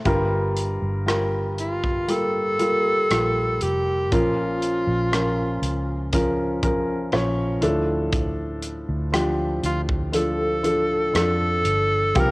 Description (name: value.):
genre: pop ballad.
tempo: 60 BPM.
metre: 4/4.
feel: straight.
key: unclear.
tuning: A4 = 440 Hz.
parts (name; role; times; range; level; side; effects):
felt-muted upright piano; accompaniment; 0.0-12.3 s; G2 to Db5; -24 LUFS; equal; cassette tape.
vintage muted fingered electric bass; bass; 0.1-12.3 s; F1 to F2; -27 LUFS; equal; none.
modern studio drum kit; drums; 0.1-12.3 s; hi-hat, kick drum, rim click; -27 LUFS; equal; none.
clear alto saxophone; melody; 1.6-12.3 s; F4 to Bb4; -23 LUFS; equal; cassette tape.
room: studio reverb.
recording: home recording on cassette.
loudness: -20 LUFS.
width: side -24 dB against mid.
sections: 0.1-12.3 A section.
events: none.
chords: 0.1 Gm7; 4.1 Bbm; 7.6 Dm.